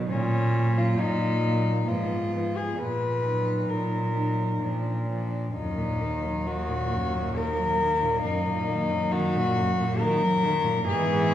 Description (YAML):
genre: classical, lyrical piece for cello ensemble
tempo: 67 BPM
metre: 3/4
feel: uneven beats, rubato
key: Eb minor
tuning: A4 = 435 Hz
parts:
  - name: dark cello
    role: second line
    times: 0.0-11.3 s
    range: F#3 to Eb4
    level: -34 LUFS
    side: right 3 dB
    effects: none
  - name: warm cello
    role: accompaniment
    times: 0.0-11.3 s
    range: Gb2 to Gb3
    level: -31 LUFS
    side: left 1 dB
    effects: none
  - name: warm cello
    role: melody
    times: 0.1-11.3 s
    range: Db4 to Cb5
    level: -27 LUFS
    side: left 3 dB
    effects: none
  - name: warm cello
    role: bass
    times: 0.1-11.3 s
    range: Eb2 to Bb2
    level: -28 LUFS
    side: right 1 dB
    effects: none
room: wet recital hall reverb, RT60 1.8 s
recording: heard from further back in the room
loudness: -23 LUFS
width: side -11 dB against mid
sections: 0.0-11.3 A section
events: none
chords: 0.1 Gb/Bb; 1.9 Fdim/Ab; 2.8 Ebm/Bb; 4.6 Bb; 5.6 Ebm; 8.2 Ebm/Gb